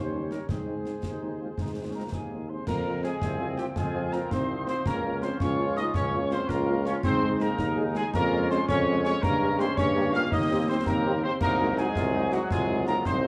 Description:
military-style march for wind band; 110 BPM (dotted quarters); 6/8; straight; A4 = 443 Hz
mellow trumpet section; melody; 0.0-13.3 s; Gb4 to F5; -36 LUFS; equal
warm woodwind section; second line; 0.0-13.3 s; Bb3 to Db5; -38 LUFS; equal
bright trombone section; sustained chords; 0.0-13.3 s; F3 to F4; -39 LUFS; equal
clear tuba; bass; 0.0-13.3 s; C2 to Ab2; -32 LUFS; equal
warm French horn section; accompaniment; 0.1-13.3 s; G3 to Ab4; -38 LUFS; equal
concert snare drum, concert bass drum and clash cymbals; drums; 0.3-13.2 s; -35 LUFS; equal
clear euphonium; second line; 1.9-13.3 s; Gb3 to F4; -37 LUFS; equal
mellow hollow piccolo; second line; 1.9-13.3 s; Gb5 to F6; -35 LUFS; equal
moderate large studio reverb, RT60 1.2 s; dark, warm production; -27 LUFS; mono
0.0-2.7 A section; 2.7-13.3 B section
0.5 Ab; 2.7 Fm; 4.9 Bbm/Db; 7.0 Ab; 8.1 Db/F; 9.2 Gdim; 10.3 Cm/Eb; 11.4 Ab7/C

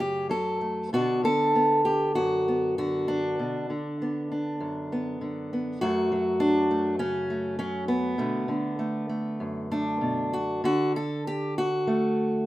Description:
folk, solo fingerstyle acoustic guitar; 98 BPM; 4/4; rubato; B minor; A4 = 442 Hz
fingerpicked steel-string acoustic guitar; solo; 0.0-12.5 s; F#2 to A4; -24 LUFS; equal
moderate studio reverb, RT60 0.5 s; minimal, uncompressed stereo recording; -24 LUFS; side -16 dB against mid
0.0-10.6 A section; 10.6-12.5 B section
0.0 F#m; 0.9 Bm; 5.8 F#m; 8.2 Bm7; 10.6 D

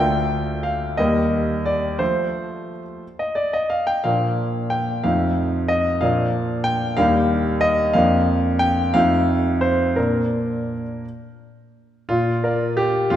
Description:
classical-period piano sonatina; 56-63 BPM (dotted quarters); 6/8; rubato; Bb major; A4 = 440 Hz
clear concert grand piano; solo; 0.0-13.2 s; D2 to G5; -18 LUFS; equal
wet concert hall reverb, RT60 1.9 s; -18 LUFS; side -11 dB against mid
0.0-12.1 A section; 12.1-13.2 B section
0.0 Dm; 1.0 Eb; 2.0 F; 4.1 Bb; 5.0 F7; 6.0 Bb; 7.0 Eb; 7.9 Bb/F; 8.9 F7; 10.0 Bb

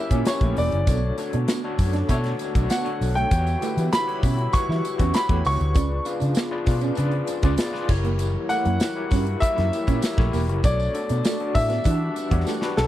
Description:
polished 1980s jazz-funk pop; 98 BPM; 4/4; straight; E dorian; A4 = 440 Hz
warm grand piano; melody; 0.0-12.9 s; A4 to C#6; -26 LUFS; equal
overdriven tine electric piano; accompaniment; 0.0-12.9 s; C#4 to E#5; -28 LUFS; left 4 dB; fast tremolo, wide subtle chorus
dark studio string section; sustained chords; 0.0-12.9 s; C#3 to F#5; -36 LUFS; left 1 dB
electric guitar at the edge of break-up; riff; 0.1-12.7 s; A3 to E4; -30 LUFS; right 9 dB; ensemble chorus
vintage muted fingered electric bass; bass; 0.1-12.9 s; E1 to E3; -23 LUFS; equal
modern studio drum kit; drums; 0.1-12.9 s; crash cymbal, hi-hat, kick drum, snare drum; -23 LUFS; equal
tambourine; percussion; 0.1-12.9 s; -42 LUFS; right 10 dB
little or no reverb; dry, close 1970s-style studio recording; -20 LUFS; side -13 dB against mid
0.0-12.9 A section
drum fill 12.5-12.9
0.0 F#7b9; 0.9 Bm9; 3.3 Em69; 5.8 C#7b9; 7.9 F#7b9; 10.6 Bm9; 11.9 Em9

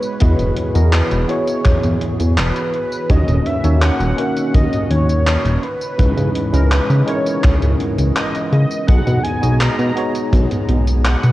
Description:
vaporwave; 83 BPM; 4/4; straight; E lydian; A4 = 441 Hz
warm velvety synth lead; melody; 0.0-11.3 s; A#4 to A#5; -24 LUFS; equal; chorus, tape echo
tine electric piano; accompaniment; 0.0-11.3 s; G#3 to D#5; -22 LUFS; equal; overdrive, fast stereo tremolo, wide subtle chorus, vintage 12-bit sampler grit, analog delay
warbly tape-like pad; sustained chords; 0.0-11.3 s; C#3 to D#5; -29 LUFS; right 2 dB; chorus, built-in reverb, vintage 12-bit sampler grit
gated 80s digital drum machine; drums; 0.0-11.3 s; handclaps, hi-hat, tambourine; -24 LUFS; equal; gated reverb, studio reverb
chorused synth bass; bass; 0.2-11.3 s; D#1 to C#3; -15 LUFS; equal; tube saturation
kick drum; drums; 0.2-10.5 s; -19 LUFS; equal; studio reverb
little or no reverb; cassette tape; -14 LUFS; side -16 dB against mid
0.0-11.3 A section
0.2 Emaj9; 3.1 D#m7; 5.6 C#m9; 8.9 B6

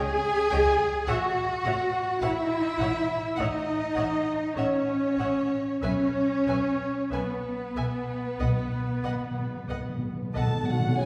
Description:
classical, slow romantic movement for symphony orchestra; 46-53 BPM; 4/4; rubato; A4 = 439 Hz
dark clarinet; second line; 0.0-11.1 s; F#4 to G#5; -37 LUFS; equal
dark cor anglais; second line; 0.0-11.1 s; B3 to G#5; -39 LUFS; equal
mellow hollow concert flute; second line; 0.0-11.1 s; B4 to B5; -41 LUFS; equal
rich chamber violin section; second line; 0.0-10.3 s; B4 to G#5; -41 LUFS; equal
rich chamber viola section; accompaniment; 0.0-10.4 s; B4 to E5; -42 LUFS; equal
mellow French horn section; sustained chords; 0.0-11.1 s; G#3 to G#4; -34 LUFS; equal
warm chamber cello section; bass; 0.0-11.1 s; E2 to G#4; -32 LUFS; equal
warm chamber violin section; melody; 0.5-11.1 s; F#5 to A5; -41 LUFS; equal
dark chamber double bass section; bass; 0.5-11.1 s; E1 to C#2; -35 LUFS; equal
timpani; percussion; 8.4-10.9 s; B2; -32 LUFS; equal
mellow bassoon; accompaniment; 11.0-11.1 s; C#4; -32 LUFS; equal
wet recital hall reverb, RT60 1.7 s; heard from further back in the room; -27 LUFS; mono
0.0-11.0 A section
timpani fill 8.4-11.0
0.0 N.C.; 1.1 F#7(no3); 5.8 N.C.; 8.4 B5

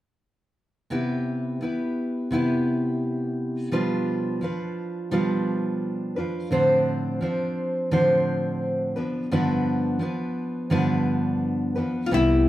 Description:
acoustic pop; 86 BPM; 4/4; swing 55% on 16ths; C major; A4 = 440 Hz
fingerpicked steel-string acoustic guitar; accompaniment; 0.9-12.5 s; G2 to C5; -23 LUFS; equal
nylon-string guitar; melody; 12.1-12.5 s; E4 to F4; -19 LUFS; left 3 dB
upright bass; bass; 12.1-12.5 s; C2; -22 LUFS; equal
wet large studio reverb, RT60 0.9 s; band playing live in one room; -23 LUFS; side -14 dB against mid
0.9-12.1 A section
0.9 Cmaj7; 3.7 G7/B; 6.5 Dm7/A; 9.0 G7

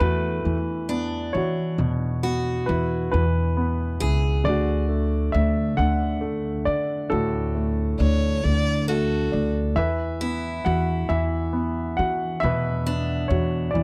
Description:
acoustic folk-pop ballad; 45 BPM (dotted quarters); 6/8; straight; A4 = 440 Hz
warm grand piano; melody; 0.0-13.8 s; A2 to F#5; -27 LUFS; equal
picked steel-string acoustic guitar; arpeggios; 0.0-4.8, 8.9-13.8 s; A3 to A4; -34 LUFS; equal
upright bass; bass; 0.0-13.8 s; C#2 to E3; -27 LUFS; equal
warm violin; second line; 8.0-9.5 s; F#4 to D5; -30 LUFS; equal
little or no reverb; dry, close 1970s-style studio recording; -24 LUFS; mono
0.0-13.8 A section
0.0 Esus2; 4.4 D; 9.8 Esus2

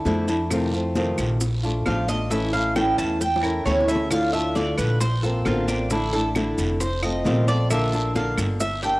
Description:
latin, Cuban son and guajira; 133 BPM; 4/4; straight; A4 = 437 Hz
flamenco guitar; accompaniment; 0.0-9.0 s; C3 to G4; -24 LUFS; left 1 dB; cassette tape
Cuban tres; arpeggios; 0.0-9.0 s; D4 to A5; -26 LUFS; right 1 dB; cassette tape
upright bass; bass; 0.1-9.0 s; F1 to F2; -26 LUFS; equal
bongos; percussion; 0.1-9.0 s; -34 LUFS; left 3 dB
congas; percussion; 0.1-9.0 s; -33 LUFS; left 1 dB
guiro; percussion; 0.1-9.0 s; -37 LUFS; right 2 dB
maracas; percussion; 0.1-9.0 s; -36 LUFS; right 2 dB
claves; percussion; 0.5-8.6 s; -36 LUFS; right 1 dB
light reverb, studio ambience; home recording on cassette; -20 LUFS; side -20 dB against mid
0.0-9.0 A section
Cuban tres solo 0.0-9.0; drum fill 3.2-4.1
0.0 Dmadd9; 0.5 F7; 1.4 Bbmaj7; 2.3 A; 4.1 Dm; 5.0 Bbadd9; 5.9 Asus4; 6.8 F7; 7.7 Bb

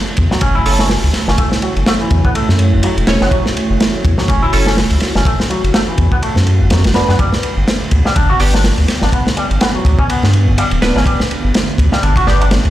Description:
breakbeat, breaks; 124 BPM; 4/4; swing 57% on 16ths; F# minor; A4 = 440 Hz
dark analog pad; sustained chords; 0.0-12.7 s; D3 to D6; -22 LUFS; equal; chorus, vintage 12-bit sampler grit, sidechain pumping
saturated sub bass; bass; 0.2-12.7 s; D1 to G2; -13 LUFS; equal
crunchy breakbeat drum kit; drums; 0.2-12.7 s; hi-hat, kick drum, ride cymbal, snare drum; -15 LUFS; equal
electric guitar with an envelope filter; riff; 0.3-12.5 s; E3 to F#4; -20 LUFS; equal; tube saturation, tape echo
band-passed chord stab; stabs; 0.7-12.4 s; B3 to C#5; -22 LUFS; right 2 dB; phaser, wide subtle chorus, cassette tape, tape echo
light reverb, small room ambience; played on a big sound system in a bare room, large studio reverb; -11 LUFS; side -14 dB against mid
0.0-12.7 A section
0.0 F#m7; 7.2 G

